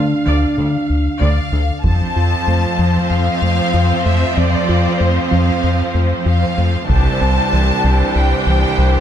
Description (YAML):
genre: cinematic, hybrid orchestral and electronic film score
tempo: 95 BPM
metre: 4/4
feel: straight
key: unclear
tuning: A4 = 440 Hz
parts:
  - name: bright symphonic viola section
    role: accompaniment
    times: 0.0-9.0 s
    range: E3 to F5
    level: -23 LUFS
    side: right 3 dB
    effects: none
  - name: mellow French horn section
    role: sustained chords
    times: 0.0-1.2 s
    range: D4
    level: -19 LUFS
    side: right 1 dB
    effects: none
  - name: soft round pluck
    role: arpeggios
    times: 0.0-9.0 s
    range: C3 to F4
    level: -25 LUFS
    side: right 1 dB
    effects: chorus
  - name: round analog bass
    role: riff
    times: 0.0-9.0 s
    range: C2 to D3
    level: -16 LUFS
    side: left 1 dB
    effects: none
  - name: bright symphonic cello section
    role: bass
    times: 0.0-9.0 s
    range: C2 to F2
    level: -22 LUFS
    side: right 3 dB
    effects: none
  - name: clear symphonic violin section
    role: melody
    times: 1.2-9.0 s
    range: C5 to A5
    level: -22 LUFS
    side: left 2 dB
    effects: none
  - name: taiko ensemble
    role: drums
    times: 1.8-3.1, 6.9-8.1 s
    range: none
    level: -21 LUFS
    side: right 1 dB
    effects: none
  - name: rich symphonic violin section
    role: second line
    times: 1.9-9.0 s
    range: F4 to C5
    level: -23 LUFS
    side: left 2 dB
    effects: none
room: moderate scoring stage reverb, RT60 1.8 s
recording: none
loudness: -13 LUFS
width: side -9 dB against mid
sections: 0.0-1.8 A section; 1.8-9.0 B section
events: none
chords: 0.0 Dm; 1.8 F; 6.9 Cadd9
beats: 0.58 1.22 | 1.85 2.48 3.11 3.74 | 4.37 5.01 5.64 6.27 | 6.90 7.53 8.16 8.79